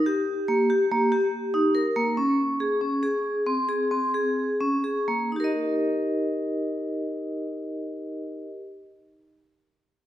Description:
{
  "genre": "contemporary instrumental, contemporary",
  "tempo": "123-142 BPM",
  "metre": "7/4",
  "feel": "straight",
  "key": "Eb mixolydian",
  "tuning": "A4 = 439 Hz",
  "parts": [
    { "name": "vibraphone with hard mallets", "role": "arpeggios", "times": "0.0-8.5 s", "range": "Bb3 to Eb5", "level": "-23 LUFS", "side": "equal", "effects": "none" }
  ],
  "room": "wet recital hall reverb, RT60 1.7 s",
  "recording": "recorded in a church or concert hall",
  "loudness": "-23 LUFS",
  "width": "side -12 dB against mid",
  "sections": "0.0-5.3 A section; 5.3-8.7 B section",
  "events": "slowing down 1.8-5.3",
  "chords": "0.0 Eb (rootless); 2.2 Db5; 5.3 Eb"
}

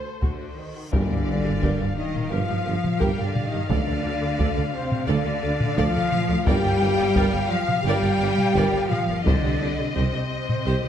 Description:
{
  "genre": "cinematic, epic orchestral film score",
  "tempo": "86 BPM",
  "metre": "4/4",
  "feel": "straight",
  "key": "G minor",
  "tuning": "A4 = 439 Hz",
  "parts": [
    { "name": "warm symphonic violin section", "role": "melody", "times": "0.0-10.9 s", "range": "C5 to F5", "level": "-32 LUFS", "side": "left 4 dB", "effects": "none" },
    { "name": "rich symphonic violin section", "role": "second line", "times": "0.0-10.9 s", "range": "A4 to G5", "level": "-33 LUFS", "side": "left 2 dB", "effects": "none" },
    { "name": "mellow French horn section", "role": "sustained chords", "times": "0.0-10.9 s", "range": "A3 to G4", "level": "-30 LUFS", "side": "left 5 dB", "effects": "none" },
    { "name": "reverse cymbal and sub drop", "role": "sound effects", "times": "0.8-3.7 s", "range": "none", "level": "-34 LUFS", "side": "equal", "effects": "none" },
    { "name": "bright symphonic viola section", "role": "accompaniment", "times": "0.2-10.9 s", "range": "F#4 to D5", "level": "-32 LUFS", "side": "right 2 dB", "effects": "none" },
    { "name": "clear symphonic cello section", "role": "bass", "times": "0.2-10.9 s", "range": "C3 to G3", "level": "-28 LUFS", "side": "right 1 dB", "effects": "none" },
    { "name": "rich studio double bass section", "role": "bass", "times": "0.2-10.9 s", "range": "G1 to G2", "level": "-29 LUFS", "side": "right 2 dB", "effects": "none" },
    { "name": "taiko ensemble", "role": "drums", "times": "0.2-10.8 s", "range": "none", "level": "-27 LUFS", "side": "equal", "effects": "none" },
    { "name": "concert flute", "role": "second line", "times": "0.9-10.9 s", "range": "C5 to G5", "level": "-32 LUFS", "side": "left 2 dB", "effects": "none" },
    { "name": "mellow tuba", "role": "bass", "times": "0.9-10.7 s", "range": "G1 to D2", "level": "-30 LUFS", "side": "right 3 dB", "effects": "none" },
    { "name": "timpani", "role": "percussion", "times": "0.9-7.5 s", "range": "G2 to D3", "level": "-33 LUFS", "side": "left 2 dB", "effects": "none" }
  ],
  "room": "moderate scoring stage reverb, RT60 1.4 s",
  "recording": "dark, warm production",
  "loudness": "-20 LUFS",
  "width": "side -9 dB against mid",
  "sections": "0.9-10.9 A section",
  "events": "reverse cymbal 0.8; impact 0.9-3.7",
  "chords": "0.0 D7; 0.9 Gm7; 3.7 Dm; 6.5 Gm7; 9.3 Cm"
}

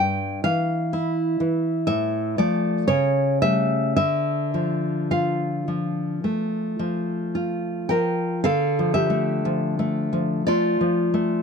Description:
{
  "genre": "romantic piece for solo classical guitar",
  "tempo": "52-64 BPM",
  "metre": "4/4",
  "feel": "rubato",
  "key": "D minor",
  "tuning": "A4 = 439 Hz",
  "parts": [
    { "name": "nylon-string guitar", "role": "solo", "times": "0.0-11.4 s", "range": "G2 to G5", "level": "-20 LUFS", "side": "equal", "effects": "none" }
  ],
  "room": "little or no reverb",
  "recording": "close, detailed microphones",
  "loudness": "-20 LUFS",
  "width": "side -6 dB against mid",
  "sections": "0.0-8.4 A section; 8.4-11.4 A section",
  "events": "none",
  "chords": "0.0 Em/G; 1.9 Dm/A; 2.9 A7/C#; 4.0 Dm"
}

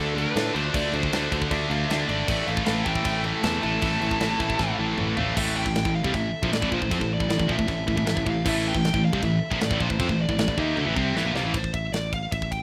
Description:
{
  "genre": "heavy metal",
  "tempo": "156 BPM",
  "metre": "4/4",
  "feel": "straight",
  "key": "A minor",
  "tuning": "A4 = 440 Hz",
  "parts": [
    { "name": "high-gain lead guitar", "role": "melody", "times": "0.0-12.6 s", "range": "A4 to A5", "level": "-33 LUFS", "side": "equal", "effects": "distortion" },
    { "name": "dark studio string section", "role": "sustained chords", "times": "0.0-11.5 s", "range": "C3 to A4", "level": "-42 LUFS", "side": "equal", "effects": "none" },
    { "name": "distorted electric guitar", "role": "riff", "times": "0.0-11.5 s", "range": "A2 to D#4", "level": "-29 LUFS", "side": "equal", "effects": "distortion" },
    { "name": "heavy high-gain guitar", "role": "riff", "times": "0.0-11.5 s", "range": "A2 to D#4", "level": "-32 LUFS", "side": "equal", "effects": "distortion" },
    { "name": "picked electric bass", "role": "bass", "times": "0.0-12.6 s", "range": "G#1 to A2", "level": "-32 LUFS", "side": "equal", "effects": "none" },
    { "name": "tight metal drum kit", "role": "drums", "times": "0.2-12.6 s", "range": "china cymbal, crash cymbal, kick drum, ride cymbal, snare drum, toms", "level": "-32 LUFS", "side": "equal", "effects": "none" }
  ],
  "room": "studio ambience",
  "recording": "rough home demo mix",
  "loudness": "-25 LUFS",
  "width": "mono",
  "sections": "0.0-5.4 A section; 5.4-11.5 B section; 11.5-12.6 C section",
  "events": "drum fill 4.6-5.4, 10.8-11.5",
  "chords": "0.0 Dm; 2.3 Am; 11.5 A5"
}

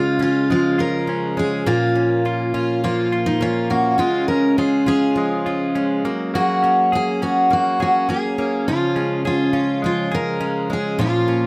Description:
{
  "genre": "acoustic pop",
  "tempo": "103 BPM",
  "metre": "4/4",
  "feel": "straight",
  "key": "Db major",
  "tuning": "A4 = 440 Hz",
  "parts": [
    { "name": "picked steel-string acoustic guitar", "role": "melody", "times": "0.0-11.5 s", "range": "Eb4 to Bb4", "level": "-23 LUFS", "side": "equal", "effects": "none" },
    { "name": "picked plugged-in twelve-string acoustic guitar", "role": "accompaniment", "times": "0.0-11.5 s", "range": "Bb2 to Ab4", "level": "-23 LUFS", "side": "equal", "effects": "none" },
    { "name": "direct-recorded clean electric guitar", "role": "arpeggios", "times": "0.0-11.5 s", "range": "F3 to Ab4", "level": "-30 LUFS", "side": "equal", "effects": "none" }
  ],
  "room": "light reverb",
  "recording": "none",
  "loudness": "-19 LUFS",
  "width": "mono",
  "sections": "0.0-11.5 A section",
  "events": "none",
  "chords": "0.0 Db; 1.7 Bbm; 4.0 Db; 6.0 Gbadd9; 8.7 Db"
}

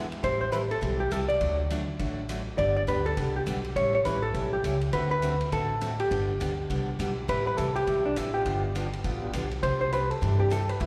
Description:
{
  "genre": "country, western swing",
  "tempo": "204 BPM",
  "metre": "4/4",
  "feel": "swing 61% on 8ths",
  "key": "G major",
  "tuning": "A4 = 442 Hz",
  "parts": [
    { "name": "picked steel-string acoustic guitar", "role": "accompaniment", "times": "0.0-10.9 s", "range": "C3 to A4", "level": "-35 LUFS", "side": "equal", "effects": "slapback echo" },
    { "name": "upright bass", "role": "bass", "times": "0.0-10.9 s", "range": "G1 to G2", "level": "-33 LUFS", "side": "equal", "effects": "none" },
    { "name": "swinging big-band drum kit", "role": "drums", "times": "0.1-10.9 s", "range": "hi-hat, kick drum, ride cymbal", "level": "-41 LUFS", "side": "equal", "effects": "none" },
    { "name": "vintage hollow-body jazz guitar", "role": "melody", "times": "0.2-10.9 s", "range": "D4 to D5", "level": "-30 LUFS", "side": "equal", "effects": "slapback echo" },
    { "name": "clear upright piano", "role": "accompaniment", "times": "8.3-10.5 s", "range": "B3 to G4", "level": "-42 LUFS", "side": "equal", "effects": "slapback echo" }
  ],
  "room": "light reverb",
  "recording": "live gig heard through the venue's PA, recital hall reverb",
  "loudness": "-28 LUFS",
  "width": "mono",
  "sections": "0.0-10.9 A section",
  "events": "none",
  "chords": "0.2 Am7; 1.4 D; 2.6 G; 3.8 A7; 4.9 D7; 6.1 G; 7.3 Am7; 8.5 G7; 9.6 Cadd9"
}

